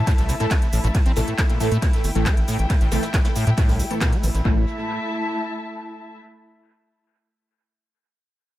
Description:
driving peak-time techno; 137 BPM; 4/4; straight; A4 = 441 Hz
gritty driven synth bass; bass; 0.0-4.7 s; G1 to A2; -22 LUFS; equal; sidechain pumping
muted studio string section; texture; 0.0-6.2 s; A3 to A5; -29 LUFS; left 1 dB; sidechain pumping
acid bass, saw; riff; 0.1-4.7 s; A1 to C4; -27 LUFS; equal; analog chorus, sidechain pumping, tape echo
electronic kick drum; drums; 0.1-4.6 s; -20 LUFS; equal
techno drum kit; drums; 0.1-4.4 s; handclaps, hi-hat, ride cymbal, shaker; -30 LUFS; equal; analog delay
vintage brush drum kit; drums; 0.1-4.4 s; hi-hat, shaker, snare drum; -38 LUFS; right 1 dB
rave stab; stabs; 0.4-4.6 s; E3 to A4; -29 LUFS; equal; chorus, built-in reverb, sidechain pumping, tape echo
light reverb, small room reverb; echo-heavy mix; -18 LUFS; side -15 dB against mid
0.0-4.5 A section; 4.5-6.2 B section
drop 0.0-4.5
0.0 A5

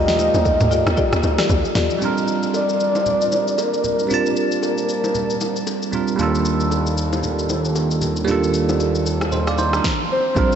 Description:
amapiano; 115 BPM; 4/4; swing 58% on 16ths; A4 = 441 Hz
soft octave-layered synth lead; melody; 0.0-5.9, 10.1-10.6 s; Bb4 to Eb5; -22 LUFS; left 1 dB; chorus, tremolo, tape echo
mellow French horn section; sustained chords; 0.0-2.0, 10.4-10.6 s; Bb2 to F4; -30 LUFS; right 2 dB
buzzing marimba with medium mallets; stabs; 0.0-1.9 s; F4 to Eb5; -27 LUFS; left 4 dB; tape echo
hollow log drum bass; bass; 0.0-1.9, 10.4-10.6 s; Bb1 to Eb2; -21 LUFS; equal
smooth R&B drum kit; drums; 0.1-10.6 s; kick drum, rim click, shaker, snare drum, toms; -25 LUFS; equal
bongos and congas; percussion; 0.2-10.5 s; -30 LUFS; left 4 dB
bell-like tine electric piano; accompaniment; 2.0-10.6 s; G3 to A5; -21 LUFS; right 5 dB; phaser
fat analog bass; bass; 6.2-9.8 s; Eb2; -22 LUFS; equal
wet huge ambient reverb, RT60 8.8 s; dreamy mix soaked in reverb, nothing above 7.9 kHz; -17 LUFS; side -8 dB against mid
0.0-2.0 A section; 2.0-10.4 B section
drop 0.0-2.0
0.0 Ebmaj9#11; 2.0 Bb6; 6.2 Ebmaj9#11

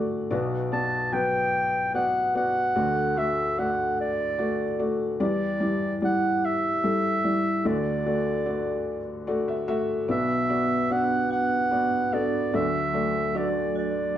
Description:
acoustic folk-pop ballad; 49 BPM (dotted quarters); 6/8; straight; D major; A4 = 440 Hz
felt-muted upright piano; accompaniment; 0.0-14.2 s; B1 to F#5; -26 LUFS; left 2 dB
mellow clarinet; melody; 0.7-14.2 s; D5 to A5; -26 LUFS; right 1 dB; slapback echo
vibraphone with medium hard mallets; arpeggios; 10.1-14.2 s; F#3 to F#4; -29 LUFS; right 3 dB
wet studio ambience, RT60 0.5 s; heard from further back in the room; -23 LUFS; side -11 dB against mid
0.0-10.1 A section; 10.1-14.2 A section
0.3 Bm; 2.8 D; 5.2 Em7; 7.6 D; 10.1 Bm; 12.5 D

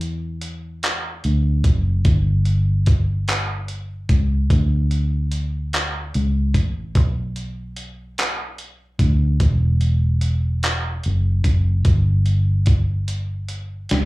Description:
slow six-eight R&B; 49 BPM (dotted quarters); 6/8; straight; A4 = 439 Hz
vintage muted fingered electric bass; bass; 0.0-14.1 s; E1 to E2; -19 LUFS; equal
dusty soul sampler-style drum kit; drums; 0.0-14.1 s; handclaps, hi-hat, kick drum, snare drum; -20 LUFS; equal
little or no reverb; live gig heard through the venue's PA, club reverb; -17 LUFS; side -20 dB against mid
0.0-14.1 A section
drum fill 13.1-14.1

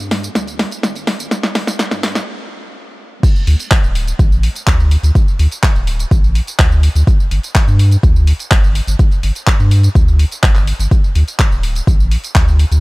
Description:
progressive house; 125 BPM; 4/4; straight; A4 = 445 Hz
saturated sub bass; bass; 0.0-12.8 s; D1 to G2; -13 LUFS; equal; sidechain pumping
deep house drum kit; drums; 0.0-12.8 s; crash cymbal, handclaps, hi-hat, snare drum, tambourine; -19 LUFS; equal; overdrive, sidechain pumping on hats, sidechain pumping on perc, sidechain pumping on cymbals
electronic kick drum; drums; 3.2-12.4 s; -12 LUFS; equal; overdrive
little or no reverb; dark, warm production, high-pass filter; -11 LUFS; side -23 dB against mid
0.0-3.2 A section; 3.2-12.8 B section
build-up 0.0-3.2; drum fill 0.0-2.3; stop 2.3-3.2; drop 3.2-12.8

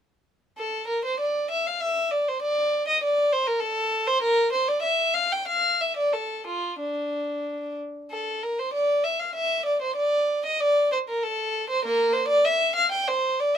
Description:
classical, baroque-style suite movement for unaccompanied violin; 89-100 BPM; 3/4; rubato; D minor; A4 = 439 Hz
warm violin; solo; 0.6-13.6 s; Bb3 to G5; -22 LUFS; equal
light reverb; minimal, uncompressed stereo recording; -22 LUFS; side -9 dB against mid
0.6-13.6 A section

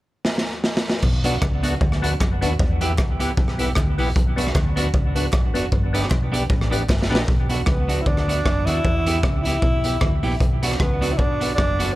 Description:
ska; 154 BPM; 4/4; swing 55% on 8ths; B minor; A4 = 440 Hz
raw garage drum kit; drums; 0.2-11.9 s; crash cymbal, hi-hat, kick drum, rim click, snare drum; -21 LUFS; equal
hollow-body short-scale fingered electric bass; bass; 1.0-11.9 s; F#1 to E2; -24 LUFS; equal
clean electric guitar; accompaniment; 1.2-11.9 s; B3 to G4; -27 LUFS; right 3 dB; analog delay
percussive tonewheel organ; stabs; 1.2-7.2 s; B3 to B4; -30 LUFS; left 4 dB; chorus vibrato, slow rotary speaker, analog delay
group handclap; percussion; 1.4-7.0 s; -38 LUFS; right 4 dB
breathy tenor saxophone; melody; 7.7-12.0 s; B3 to E4; -24 LUFS; equal; analog delay
studio ambience; -18 LUFS; side -17 dB against mid
0.0-1.0 A section; 1.0-7.3 B section; 7.3-12.0 C section
drum fill 0.2-1.0, 6.9-7.3
0.0 N.C.; 1.0 Bm; 2.6 Em; 4.2 Bm; 5.7 G; 7.3 Bm; 8.8 Em; 10.4 Bm

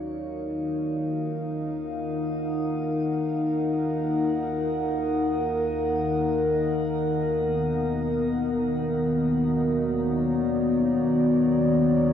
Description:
dark ambient drone; free time; Eb minor; A4 = 439 Hz
dark analog pad; sustained chords; 0.0-12.1 s; B3 to Gb5; -24 LUFS; left 1 dB; chorus, shimmer reverb
organ-like drone; drone; 0.0-12.1 s; Eb2 to Eb3; -30 LUFS; right 1 dB; ensemble chorus, built-in reverb
wet huge ambient reverb, RT60 8.8 s; dark, warm production; -23 LUFS; side -9 dB against mid
0.0-12.1 A section
fade-in on synth drone 0.0-12.1
0.0 Ebm; 7.3 Bmadd9

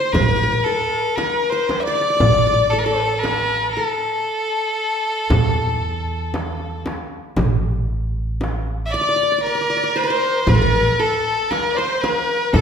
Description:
Arabic maqam ensemble; 116 BPM (eighths); 10/8; straight; A maqam bayati; A4 = 439 Hz
rich violin; melody; 0.0-12.6 s; A4 to E5; -20 LUFS; left 2 dB
clear chamber violin section; second line; 0.0-12.6 s; A4 to D5; -24 LUFS; left 3 dB
qanun; second line; 0.0-12.6 s; A4 to D5; -25 LUFS; right 2 dB
upright bass; bass; 0.1-12.6 s; A1 to E2; -23 LUFS; right 1 dB
darbuka; percussion; 0.1-12.6 s; -24 LUFS; right 3 dB
frame drum; percussion; 0.1-12.6 s; -25 LUFS; equal
wet recital hall reverb, RT60 1.4 s; recorded in a church or concert hall; -17 LUFS; side -7 dB against mid
0.0-12.6 A section

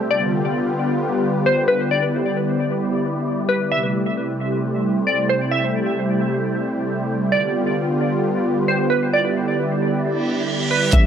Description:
hip hop, atmospheric cloud-rap; 133 BPM; 4/4; half-time; A minor; A4 = 440 Hz
glassy wavetable pluck; melody; 0.0-11.1 s; B4 to E5; -22 LUFS; equal; chorus, low-pass filter, dub echo
warm analog pad; sustained chords; 0.0-11.1 s; C3 to G4; -20 LUFS; equal; chorus, sidechain pumping
wind-like tuned noise texture; texture; 0.0-11.1 s; G3 to D5; -30 LUFS; equal; built-in reverb
reverse cymbal; sound effects; 10.2-10.9 s; -24 LUFS; right 4 dB
long sustained 808-style bass; bass; 10.9-11.1 s; A1; -14 LUFS; equal
smooth R&B drum kit; drums; 10.9-11.0 s; hi-hat, kick drum; -15 LUFS; equal
light reverb; echo-heavy mix; -18 LUFS; side -8 dB against mid
0.0-10.9 A section
reverse cymbal 10.2-10.9
0.1 G7; 1.9 Em7; 3.7 Am7; 7.3 G7; 9.1 Em7

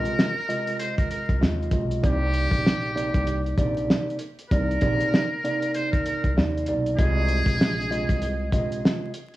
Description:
hip hop, boom-bap hip-hop; 97 BPM; 4/4; swing 60% on 16ths; C minor; A4 = 440 Hz
trumpet with metal mute; melody; 0.0-8.4 s; G4 to C5; -30 LUFS; equal; high-pass filter, low-pass filter, cassette tape, tape echo
mellow tine electric piano; accompaniment; 0.0-9.1 s; C3 to Eb5; -27 LUFS; right 1 dB; medium stereo tremolo, cassette tape, high-pass filter, low-pass filter
upright bass; bass; 0.0-8.8 s; Bb1 to Eb2; -27 LUFS; equal
cloth-damped thuddy drum kit; drums; 0.1-9.4 s; hi-hat, kick drum, snare drum; -23 LUFS; equal
light reverb; home recording on cassette, vinyl crackle, studio reverb; -21 LUFS; side -16 dB against mid
0.0-9.4 A section
0.0 Bb7sus4; 2.0 Cm9; 7.0 Bb7sus4

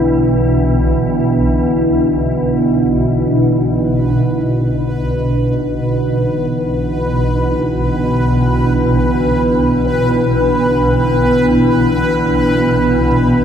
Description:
dark ambient drone; free time; B minor; A4 = 439 Hz
deep dark ambient pad; sustained chords; 0.0-13.4 s; D4 to B4; -16 LUFS; equal; chorus, built-in reverb
swarming drone; drone; 0.0-13.4 s; B1 to B2; -15 LUFS; equal; built-in reverb
bubbling stepped-filter texture; texture; 3.9-13.4 s; B4; -19 LUFS; left 1 dB; chorus, built-in reverb
wet cathedral reverb, RT60 5.7 s; -12 LUFS; side -8 dB against mid
0.0-3.7 A section; 3.7-13.4 B section
filter sweep on synth drone 0.0-3.7
0.0 Bm

